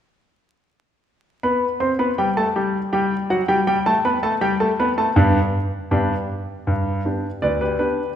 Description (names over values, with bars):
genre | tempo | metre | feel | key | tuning
ragtime piano | 80 BPM | 2/4 | straight | G major | A4 = 440 Hz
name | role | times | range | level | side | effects
clear grand piano | solo | 1.4-8.1 s | D2 to C6 | -18 LUFS | equal | none
room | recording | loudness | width
wet recital hall reverb, RT60 1.6 s | recorded in a church or concert hall, vinyl crackle | -18 LUFS | side -9 dB against mid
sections
0.7-6.7 A section; 6.7-8.2 B section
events
none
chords
0.7 G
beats
| 0.68 1.43 | 2.18 2.92 | 3.67 4.42 | 5.17 5.92 | 6.67 7.42